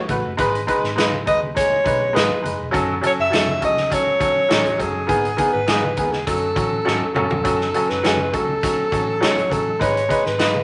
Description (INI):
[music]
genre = uptempo 1960s-style soul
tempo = 102 BPM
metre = 4/4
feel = straight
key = F# dorian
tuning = A4 = 440 Hz
[part]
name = breathy alto saxophone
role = melody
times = 0.0-10.6 s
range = G#4 to E5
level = -23 LUFS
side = equal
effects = none
[part]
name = clear upright piano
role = accompaniment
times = 0.1-10.6 s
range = D#3 to B4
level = -24 LUFS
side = equal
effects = none
[part]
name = vintage muted fingered electric bass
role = bass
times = 0.1-10.6 s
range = E1 to G#2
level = -33 LUFS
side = equal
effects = none
[part]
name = swinging big-band drum kit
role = drums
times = 0.1-10.5 s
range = hi-hat, kick drum, snare drum, toms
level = -26 LUFS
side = equal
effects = none
[part]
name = congas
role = percussion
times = 0.1-10.6 s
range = none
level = -38 LUFS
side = equal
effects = none
[part]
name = electric guitar through a small old amp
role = stabs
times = 1.0-10.5 s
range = F#4 to D#5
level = -28 LUFS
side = equal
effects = none
[sound]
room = moderate studio reverb, RT60 0.5 s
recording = vinyl crackle, nothing above 10.9 kHz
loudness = -19 LUFS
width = mono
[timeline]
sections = 0.0-7.4 A section; 7.4-10.6 A section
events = drum fill 6.9-7.4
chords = 0.4 G#m; 2.7 F#m; 5.1 G#m; 6.3 F#m; 9.8 G#m